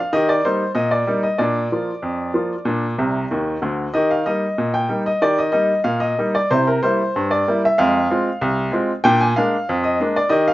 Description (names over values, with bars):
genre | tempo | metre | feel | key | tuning
ragtime piano | 94 BPM | 2/4 | straight | Eb major | A4 = 441 Hz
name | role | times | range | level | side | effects
bright upright piano | solo | 0.0-10.5 s | C2 to Ab5 | -16 LUFS | equal | none
room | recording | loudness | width
light reverb | nothing above 7.6 kHz | -17 LUFS | side -16 dB against mid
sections
0.0-10.5 A section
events
upright piano fill 3.0-4.0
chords
0.1 Eb; 1.4 Bb; 4.0 Eb; 6.5 C7; 7.8 Fm; 9.0 Bb7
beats
| 0.12 0.76 | 1.40 2.04 | 2.67 3.31 | 3.95 4.59 | 5.23 5.87 | 6.51 7.14 | 7.78 8.41 | 9.05 9.68 | 10.32